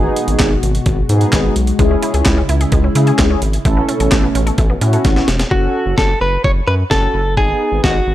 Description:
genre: synth-pop.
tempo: 129 BPM.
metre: 4/4.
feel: straight.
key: unclear.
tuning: A4 = 440 Hz.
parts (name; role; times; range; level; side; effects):
mellow synth brass; accompaniment; 0.0-8.0 s; B3 to A4; -20 LUFS; left 1 dB; chorus.
warm analog pad; sustained chords; 0.0-5.5 s; B2 to F#4; -22 LUFS; equal; chorus.
round analog bass; bass; 0.0-8.1 s; E1 to C#3; -16 LUFS; equal; none.
breakbeat sampler-style drum kit; drums; 0.2-7.9 s; handclaps, hi-hat, kick drum, snare drum; -16 LUFS; equal; none.
resonant blip pluck; arpeggios; 1.8-5.2 s; G#3 to A4; -24 LUFS; right 2 dB; chorus, tape echo.
direct-recorded clean electric guitar; melody; 5.5-8.1 s; F#4 to C#5; -17 LUFS; equal; tape echo.
room: digital ambience.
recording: dry, gritty hardware recording, transformer saturation.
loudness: -12 LUFS.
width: side -14 dB against mid.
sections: 0.0-5.5 A section; 5.5-8.1 B section.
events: drum fill 5.0-5.5.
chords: 0.0 G#m7; 1.8 C#m; 3.7 Aadd9; 5.5 F#m; 7.4 G#m7.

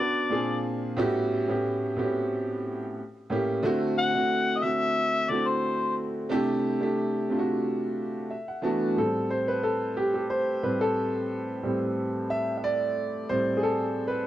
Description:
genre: R&B.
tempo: 90 BPM.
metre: 4/4.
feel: swing 53% on 16ths.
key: A dorian.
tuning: A4 = 439 Hz.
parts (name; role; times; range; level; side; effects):
mellow harmonica; melody; 0.0-6.0 s; C5 to F#5; -26 LUFS; left 3 dB; slapback echo.
warm concert grand piano; accompaniment; 0.0-14.3 s; A2 to A5; -26 LUFS; right 1 dB; none.
room: little or no reverb.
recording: worn, warbling old tape, cassette tape, warbly pitch drift.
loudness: -25 LUFS.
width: side -13 dB against mid.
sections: 0.0-9.0 A section; 9.0-14.3 B section.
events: grand piano fill 8.0-9.0; grand piano solo 9.0-14.3.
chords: 0.3 Bb9; 1.0 A13; 3.0 A7b9; 3.6 D9; 6.3 C6; 8.3 E9sus4; 9.0 Am7.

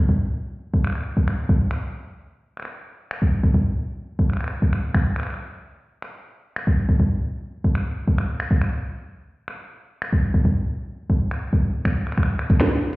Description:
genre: IDM.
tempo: 139 BPM.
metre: 4/4.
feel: straight.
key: none.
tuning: none.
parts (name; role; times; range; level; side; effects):
electronic kick drum; drums; 0.1-12.6 s; none; -18 LUFS; equal; none.
glitchy drum kit; drums; 0.8-13.0 s; finger snaps, hi-hat, snare drum; -29 LUFS; equal; digital delay.
room: light reverb.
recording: heard muffled through a wall, stone room reverb, EQ.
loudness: -20 LUFS.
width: side -22 dB against mid.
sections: 0.0-12.2 A section.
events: none.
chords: none.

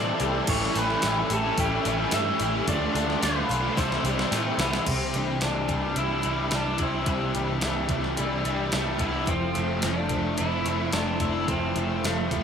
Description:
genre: rock, shoegaze and dream pop.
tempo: 109 BPM.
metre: 4/4.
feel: straight.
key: C major.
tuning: A4 = 444 Hz.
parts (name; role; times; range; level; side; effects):
electric guitar through a small old amp; melody; 0.0-12.4 s; G3 to E5; -30 LUFS; equal; ping-pong delay.
deep dark ambient pad; sustained chords; 0.0-4.9 s; G4 to D6; -35 LUFS; right 3 dB; chorus, built-in reverb.
picked twelve-string acoustic guitar; arpeggios; 0.0-12.4 s; E3 to G4; -36 LUFS; left 2 dB; ensemble chorus, ping-pong delay.
cranked stack guitar; riff; 0.0-12.4 s; A2 to F4; -29 LUFS; left 7 dB; overdrive, analog chorus.
crunchy overdriven guitar; riff; 0.0-12.4 s; A2 to F4; -30 LUFS; right 7 dB; reverse reverb.
vintage muted picked electric bass; bass; 0.0-12.4 s; F1 to A2; -31 LUFS; equal; none.
crisp 8-bit digital drum machine; drums; 0.2-12.4 s; crash cymbal, hi-hat, kick drum, snare drum; -31 LUFS; equal; none.
room: wet church reverb, RT60 3.4 s.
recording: dreamy mix soaked in reverb.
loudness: -23 LUFS.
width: side -7 dB against mid.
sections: 0.0-4.9 A section; 4.9-12.4 B section.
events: drum fill 3.8-4.9.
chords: 0.5 A7; 2.7 Dm; 3.8 C; 4.9 Cadd9; 9.3 Fmaj7.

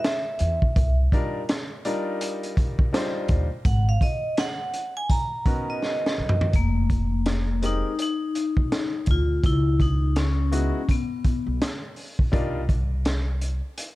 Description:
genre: hip hop, jazz-hop.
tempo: 83 BPM.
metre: 4/4.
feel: swing 60% on 16ths.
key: unclear.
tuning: A4 = 440 Hz.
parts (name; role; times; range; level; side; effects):
vibraphone with hard mallets; melody; 0.0-11.6 s; Bb3 to Bb5; -28 LUFS; left 2 dB; none.
crunchy breakbeat drum kit; drums; 0.0-14.0 s; hi-hat, kick drum, snare drum, toms; -24 LUFS; equal; none.
upright bass; bass; 0.4-13.6 s; F1 to Fb2; -23 LUFS; equal; none.
clear grand piano; accompaniment; 1.1-12.6 s; G3 to C5; -30 LUFS; left 1 dB; none.
room: studio ambience.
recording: dark, warm production.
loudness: -22 LUFS.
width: side -18 dB against mid.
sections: 0.0-6.5 A section; 6.5-14.0 B section.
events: vibraphone solo 0.0-6.5; drum fill 5.8-6.5.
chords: 0.0 N.C.; 0.8 Cm11; 3.7 Abm11 (rootless); 6.5 F7sus4; 9.4 Db7(no3); 12.3 Cm11.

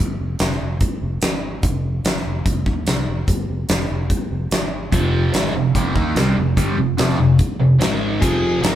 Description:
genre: classic rock.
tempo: 146 BPM.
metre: 4/4.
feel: straight.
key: F dorian.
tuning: A4 = 440 Hz.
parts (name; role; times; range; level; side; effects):
fingered electric bass; bass; 0.0-8.8 s; F1 to Eb2; -24 LUFS; equal; none.
big rock drum kit; drums; 0.4-8.7 s; hi-hat, kick drum, snare drum; -20 LUFS; equal; none.
crunchy overdriven guitar; riff; 4.9-8.8 s; F2 to Eb4; -18 LUFS; equal; phaser.
overdriven electric guitar; riff; 4.9-8.8 s; F2 to Eb4; -22 LUFS; right 1 dB; none.
octave-fuzz lead guitar; second line; 8.2-8.8 s; Ab4 to Bb4; -26 LUFS; left 2 dB; distortion.
room: light reverb.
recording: band playing live in one room.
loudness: -17 LUFS.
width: side -12 dB against mid.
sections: 0.0-8.8 A section.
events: none.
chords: 0.0 N.C.; 4.9 Fm; 7.8 Ab5; 8.2 Fm.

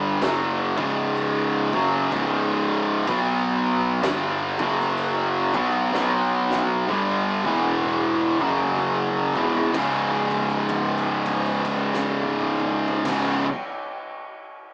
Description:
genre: stoner and doom metal.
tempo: 63 BPM.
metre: 4/4.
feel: swing 59% on 8ths.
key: C# minor.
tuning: A4 = 440 Hz.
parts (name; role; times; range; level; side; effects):
high-gain distorted guitar; riff; 0.0-13.5 s; C#2 to B3; -26 LUFS; equal; distortion.
thick fuzz guitar; riff; 0.0-13.5 s; C#2 to B3; -32 LUFS; equal; distortion.
thick fuzz guitar; riff; 0.0-13.4 s; C#2 to B3; -29 LUFS; equal; distortion.
fuzz fingered electric bass; bass; 0.0-13.4 s; C#1 to B1; -32 LUFS; equal; overdrive.
oversized low-tuned drum kit; drums; 0.2-13.3 s; crash cymbal, kick drum, snare drum, toms; -34 LUFS; equal; none.
room: wet booth ambience, RT60 0.2 s.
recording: rough rehearsal-room recording, warm saturation, small speaker sound.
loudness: -23 LUFS.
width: mono.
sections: 0.0-9.7 A section; 9.7-13.5 B section.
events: drum fill 5.9-9.7; held note 9.7-13.0.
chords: 0.2 C#5; 3.1 B5; 4.0 G5; 4.5 F#5; 5.5 B5; 6.9 G5; 7.4 E5; 8.3 F#5; 9.3 E5; 9.7 C#5.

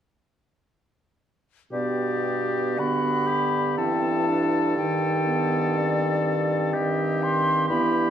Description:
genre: classical, slow romantic movement for wind quintet.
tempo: 54-64 BPM.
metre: 3/4.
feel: rubato.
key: G major.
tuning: A4 = 443 Hz.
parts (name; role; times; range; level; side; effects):
concert flute; melody; 1.7-8.1 s; D5 to C6; -27 LUFS; left 2 dB; none.
clear oboe; second line; 1.7-8.1 s; F#4 to A4; -30 LUFS; left 4 dB; none.
clear clarinet; accompaniment; 1.7-8.1 s; B3 to Eb4; -30 LUFS; right 4 dB; none.
mellow French horn; accompaniment; 1.7-8.1 s; B2 to E3; -28 LUFS; equal; none.
warm bassoon; bass; 1.7-8.1 s; G2; -28 LUFS; right 2 dB; none.
room: wet stone room reverb, RT60 1.3 s.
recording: dark, warm production.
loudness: -21 LUFS.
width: side -9 dB against mid.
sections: 1.7-8.1 A section.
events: none.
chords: 1.7 G; 4.8 Cm/G.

